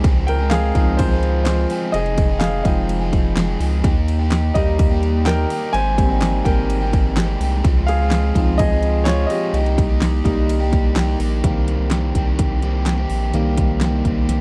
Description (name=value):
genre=piano-driven pop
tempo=126 BPM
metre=4/4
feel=straight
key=unclear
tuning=A4 = 440 Hz
part: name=warm concert grand piano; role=accompaniment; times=0.0-14.4 s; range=Eb3 to Ab5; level=-24 LUFS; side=equal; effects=none
part: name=overdriven electric guitar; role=riff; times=0.0-14.4 s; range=F2 to Ab4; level=-28 LUFS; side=equal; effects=none
part: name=round analog bass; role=bass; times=0.0-14.4 s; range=F1 to Eb2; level=-22 LUFS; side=equal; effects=none
part: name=pop drum kit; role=drums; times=0.0-14.4 s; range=handclaps, hi-hat, kick drum, ride cymbal, snare drum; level=-22 LUFS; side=equal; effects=none
room=little or no reverb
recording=dry, close 1970s-style studio recording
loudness=-18 LUFS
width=mono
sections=0.0-11.4 A section; 11.4-14.4 B section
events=grand piano solo 0.0-11.4, 11.4-14.4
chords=0.0 Dbmaj7; 1.9 Fm7; 3.8 Eb; 5.7 Abmaj7; 7.6 Dbmaj7; 9.5 Cm7